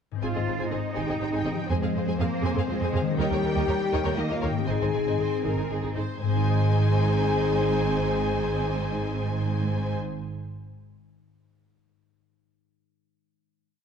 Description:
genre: cinematic, heroic adventure film score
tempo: 121 BPM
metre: 3/4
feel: straight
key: Ab major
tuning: A4 = 440 Hz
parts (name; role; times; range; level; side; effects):
- concert harp; arpeggios; 0.1-10.3 s; Ab2 to Eb5; -32 LUFS; left 7 dB; none
- warm symphonic violin section; melody; 0.2-9.9 s; C5 to Ab5; -36 LUFS; left 4 dB; none
- warm symphonic violin section; second line; 0.2-9.9 s; Eb4 to Ab5; -34 LUFS; left 2 dB; none
- warm symphonic viola section; accompaniment; 0.2-9.9 s; C4 to Bb4; -34 LUFS; right 2 dB; none
- mellow French horn section; sustained chords; 0.2-9.9 s; C4 to Ab4; -31 LUFS; left 5 dB; none
- rich symphonic cello section; bass; 0.2-9.9 s; Ab2 to F4; -31 LUFS; right 3 dB; none
- warm symphonic double bass section; bass; 0.2-10.0 s; Ab1 to F2; -28 LUFS; right 3 dB; none
room: moderate scoring stage reverb, RT60 1.8 s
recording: dark, warm production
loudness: -23 LUFS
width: side -7 dB against mid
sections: 0.2-6.2 theme; 6.2-9.2 final chord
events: none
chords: 0.2 Ab; 1.7 Fm; 3.2 Eb7; 4.7 Ab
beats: | 0.22 0.72 1.21 | 1.70 2.19 2.68 | 3.18 3.68 4.17 | 4.68 5.20 5.71 | 6.21 6.71 7.21 | 7.70 8.20 8.69

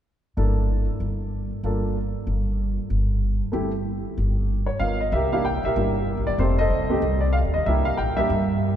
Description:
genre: jazz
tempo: 189 BPM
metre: 4/4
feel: swing 61% on 8ths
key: C mixolydian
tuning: A4 = 441 Hz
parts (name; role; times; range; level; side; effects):
- warm upright piano; melody; 0.4-8.8 s; G3 to G5; -25 LUFS; right 1 dB; none
- upright bass; bass; 0.4-8.8 s; F1 to G2; -23 LUFS; equal; none
room: wet cathedral reverb, RT60 4.6 s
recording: recorded in a church or concert hall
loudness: -21 LUFS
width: side -10 dB against mid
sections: 0.1-5.1 A section; 5.1-8.8 B section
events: none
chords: 0.1 Gm69; 2.0 N.C.; 5.1 C7; 6.4 F7; 7.7 C7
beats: | 0.06 0.37 0.69 1.01 | 1.32 1.64 1.96 2.27 | 2.59 2.91 3.22 3.54 | 3.86 4.17 4.49 4.81 | 5.13 5.45 5.76 6.08 | 6.40 6.71 7.03 7.35 | 7.67 7.99 8.30 8.62

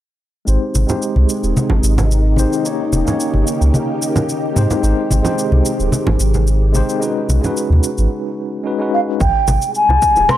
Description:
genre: sunset chillout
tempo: 110 BPM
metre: 4/4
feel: straight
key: Ab major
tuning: A4 = 441 Hz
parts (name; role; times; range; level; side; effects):
- tine electric piano; accompaniment; 0.5-9.2 s; Ab3 to Db5; -21 LUFS; moving between left 5 dB and right 5 dB; medium stereo tremolo, auto-pan, low-pass filter, tape echo
- soft string machine; sustained chords; 0.7-10.4 s; C3 to G4; -23 LUFS; left 1 dB; ensemble chorus
- warm sub bass; bass; 0.5-10.3 s; Eb1 to Ab2; -14 LUFS; equal; none
- electronic shaker and rim click; drums; 0.5-10.4 s; none; -26 LUFS; equal; overdrive
- congas and bongos; percussion; 0.8-10.4 s; none; -20 LUFS; right 1 dB; none
- mellow hollow baroque flute; melody; 8.9-10.4 s; F5 to C6; -13 LUFS; equal; none
- electronic kick drum; drums; 9.2-10.1 s; none; -20 LUFS; equal; overdrive
room: digital ambience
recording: dry, gritty hardware recording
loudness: -14 LUFS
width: side -13 dB against mid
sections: 0.5-9.2 A section; 9.2-10.4 B section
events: break 8.1-9.2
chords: 0.5 Abmaj7; 2.7 Eb7; 4.6 Abmaj7; 7.0 B69; 9.2 Abmaj7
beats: | 0.48 1.02 1.57 2.11 | 2.66 3.20 3.75 4.29 | 4.84 5.38 5.93 6.48 | 7.02 7.57 8.11 8.66 | 9.20 9.75 10.29

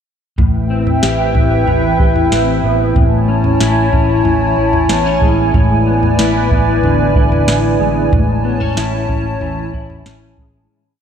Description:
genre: dream pop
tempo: 93 BPM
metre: 4/4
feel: straight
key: A major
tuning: A4 = 440 Hz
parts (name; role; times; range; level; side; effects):
- hollow soft pad; sustained chords; 0.4-10.7 s; E4 to A5; -16 LUFS; right 1 dB; chorus
- mellow electric guitar; arpeggios; 0.4-11.0 s; A2 to G4; -16 LUFS; left 2 dB; ensemble chorus, analog delay
- vintage muted fingered electric bass; bass; 0.4-10.7 s; A1; -20 LUFS; equal; none
- soft vintage rhythm box; drums; 0.4-10.5 s; kick drum, snare drum, toms; -17 LUFS; right 1 dB; none
room: moderate plate reverb, RT60 2.5 s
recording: dreamy mix soaked in reverb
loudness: -11 LUFS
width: side -8 dB against mid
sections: 0.4-10.7 verse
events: fade-out 8.1-10.7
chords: 0.4 Cmaj7/A; 3.0 Amaj7; 5.5 E7/A; 8.1 Amaj7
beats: | 0.38 1.02 1.67 2.31 | 2.96 3.60 4.25 4.89 | 5.54 6.18 6.83 7.48 | 8.12 8.77 9.41 10.06

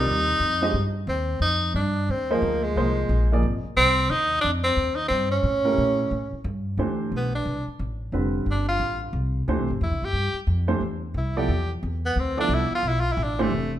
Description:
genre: modal jazz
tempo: 178 BPM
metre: 4/4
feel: swing 62% on 8ths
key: D dorian from 6.8 s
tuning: A4 = 440 Hz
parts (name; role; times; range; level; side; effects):
- bright tenor saxophone; melody; 0.0-13.7 s; Ab3 to G4; -24 LUFS; equal; none
- clear upright piano; accompaniment; 0.0-3.4, 5.6-13.5 s; D3 to Eb5; -27 LUFS; right 2 dB; none
- upright bass; bass; 0.0-13.8 s; F1 to Bb2; -26 LUFS; equal; none
room: wet large studio reverb, RT60 1.3 s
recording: minimal, uncompressed stereo recording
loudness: -22 LUFS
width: side -12 dB against mid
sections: 0.0-6.8 A section; 6.8-13.8 B section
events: tenor saxophone solo 6.8-13.8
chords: 0.0 Cm7; 1.4 Fm11; 4.1 Cm; 5.5 A7b9; 6.8 Dm9; 9.5 C; 12.2 Dm9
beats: | 0.07 0.40 0.74 1.08 | 1.41 1.75 2.09 2.42 | 2.76 3.10 3.43 3.77 | 4.11 4.44 4.78 5.12 | 5.45 5.79 6.12 6.46 | 6.79 7.13 7.47 7.80 | 8.14 8.47 8.81 9.15 | 9.48 9.82 10.15 10.49 | 10.83 11.16 11.50 11.83 | 12.17 12.50 12.84 13.18 | 13.51

